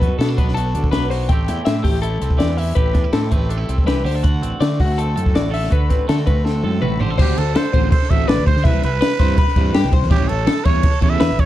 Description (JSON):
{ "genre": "math rock and midwest emo", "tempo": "163 BPM", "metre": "4/4", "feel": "straight", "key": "unclear", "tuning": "A4 = 440 Hz", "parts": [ { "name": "twangy electric guitar", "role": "accompaniment", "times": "0.0-8.7 s", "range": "A2 to B4", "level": "-28 LUFS", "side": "right 8 dB", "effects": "none" }, { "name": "twelve-string electric guitar", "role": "arpeggios", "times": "0.0-11.5 s", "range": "F#4 to G5", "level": "-24 LUFS", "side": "left 7 dB", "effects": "none" }, { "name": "fuzz fingered electric bass", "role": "bass", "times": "0.0-11.5 s", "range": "A1 to D3", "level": "-21 LUFS", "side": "equal", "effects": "overdrive" }, { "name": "compact cocktail drum kit", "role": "drums", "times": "0.0-11.5 s", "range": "crash cymbal, hi-hat, kick drum, snare drum, toms", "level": "-17 LUFS", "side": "equal", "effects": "none" }, { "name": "growling trumpet", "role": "melody", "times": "7.2-11.5 s", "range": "G4 to E5", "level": "-23 LUFS", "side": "right 6 dB", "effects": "none" }, { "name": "overdriven electric guitar", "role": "riff", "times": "7.2-11.4 s", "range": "D3 to F#4", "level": "-26 LUFS", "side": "right 3 dB", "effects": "none" } ], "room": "light reverb", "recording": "dark, warm production", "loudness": "-15 LUFS", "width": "side -14 dB against mid", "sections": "0.0-7.2 A section; 7.2-11.5 B section", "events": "drum fill 6.4-7.2", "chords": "0.0 Bm7; 1.3 Am7; 4.1 D7; 7.2 D5; 8.6 Cmaj7; 10.1 A7" }